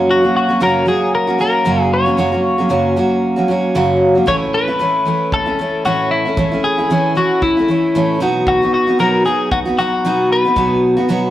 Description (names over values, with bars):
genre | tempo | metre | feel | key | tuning
acoustic pop | 115 BPM | 4/4 | swing 55% on 16ths | B major | A4 = 440 Hz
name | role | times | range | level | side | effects
picked steel-string acoustic guitar | accompaniment | 0.0-11.3 s | F#2 to F#4 | -15 LUFS | right 1 dB | none
twelve-string electric guitar | melody | 0.1-10.8 s | E4 to C#5 | -16 LUFS | left 2 dB | none
kick drum | drums | 4.3-10.7 s | none | -25 LUFS | equal | none
room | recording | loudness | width
wet stone room reverb, RT60 1.5 s | rough rehearsal-room recording | -13 LUFS | side -13 dB against mid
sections
0.0-11.3 A section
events
none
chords
0.0 F#; 4.3 A; 8.2 B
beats
| 0.09 0.61 1.14 1.66 | 2.18 2.71 3.23 3.75 | 4.28 4.80 5.32 5.85 | 6.37 6.90 7.42 7.94 | 8.47 8.99 9.52 10.04 | 10.56 11.09